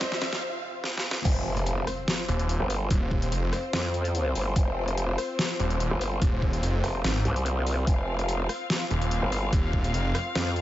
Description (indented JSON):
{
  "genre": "heavy wobble dubstep",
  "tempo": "145 BPM",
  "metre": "4/4",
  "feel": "half-time",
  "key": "unclear",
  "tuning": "A4 = 440 Hz",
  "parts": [
    { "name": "muted studio string section", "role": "sustained chords", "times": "0.0-10.6 s", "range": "F2 to F5", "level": "-34 LUFS", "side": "left 2 dB", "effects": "sidechain pumping" },
    { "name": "dubstep drum kit", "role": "drums", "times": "0.0-10.6 s", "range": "crash cymbal, hi-hat, rim click, snare drum", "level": "-31 LUFS", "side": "equal", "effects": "overdrive, small room reverb" },
    { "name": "electronic kick drum", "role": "drums", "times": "0.0-9.8 s", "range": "none", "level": "-25 LUFS", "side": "equal", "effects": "overdrive, small room reverb" },
    { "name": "riser and impact", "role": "sound effects", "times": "0.0-2.9 s", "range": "none", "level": "-35 LUFS", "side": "equal", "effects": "none" },
    { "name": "growl bass", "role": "bass", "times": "1.3-10.6 s", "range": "F1 to F2", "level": "-27 LUFS", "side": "equal", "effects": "chorus, overdrive" },
    { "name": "snarling distorted saw bass", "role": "bass", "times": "2.3-10.1 s", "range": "Eb1 to Ab1", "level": "-26 LUFS", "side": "equal", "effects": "distortion, overdrive" }
  ],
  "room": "little or no reverb",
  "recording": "high-pass filter, nothing above 7.7 kHz",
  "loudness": "-24 LUFS",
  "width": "side -14 dB against mid",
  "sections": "0.0-1.3 A section; 1.3-10.6 B section",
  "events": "build-up 0.0-1.3; drum fill 0.0-0.4, 0.8-1.3; riser 0.0-0.4; break 0.4-1.3; drop 1.3-10.6; impact 1.3-2.9",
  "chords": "0.0 F5",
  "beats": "0.01 0.42 0.84 | 1.25 1.67 2.08 2.49 | 2.91 3.32 3.73 4.15 | 4.56 4.97 5.39 5.80 | 6.22 6.63 7.04 7.46 | 7.87 8.29 8.70 9.11 | 9.53 9.94 10.35"
}